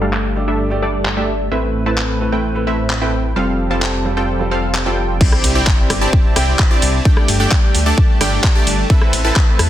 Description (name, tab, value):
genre	EDM, festival progressive house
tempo	130 BPM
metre	4/4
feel	straight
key	C major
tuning	A4 = 440 Hz
part	warm grand piano	accompaniment	0.0-4.9 s	G3 to D5	-24 LUFS	right 3 dB	sidechain pumping, digital delay
part	lush unison pad	sustained chords	0.0-9.7 s	C3 to B4	-26 LUFS	left 1 dB	chorus, sidechain pumping
part	supersaw stab	riff	0.0-9.7 s	G3 to A5	-19 LUFS	right 1 dB	sidechain pumping, low-pass filter, digital delay
part	wide detuned saw bass	bass	0.0-9.7 s	F1 to E2	-19 LUFS	equal	chorus, sidechain pumping
part	pop drum kit	drums	0.1-9.7 s	crash cymbal, handclaps, hi-hat, ride cymbal, rim click	-20 LUFS	equal	low-pass filter on snare, low-pass filter on hats, low-pass filter on cymbals
part	electronic kick drum	drums	5.2-9.5 s	none	-13 LUFS	equal	overdrive
part	sub drop	sound effects	5.2-7.1 s	none	-25 LUFS	left 1 dB	none
room	light reverb, digital ambience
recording	dense, heavily limited modern master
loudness	-13 LUFS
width	side -12 dB against mid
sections	0.0-5.2 A section; 5.2-9.7 B section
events	filter sweep on supersaw synth 0.0-5.2; drop 5.2-9.7; impact 5.2-7.1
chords	0.0 Gsus2; 1.5 Amadd9; 3.4 Fadd9; 5.2 Cadd9; 7.1 Gsus2; 8.9 Amadd9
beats	0.13 0.59 1.05 | 1.51 1.98 2.44 2.90 | 3.36 3.82 4.29 4.75 | 5.21 5.67 6.13 6.59 | 7.05 7.51 7.98 8.44 | 8.90 9.36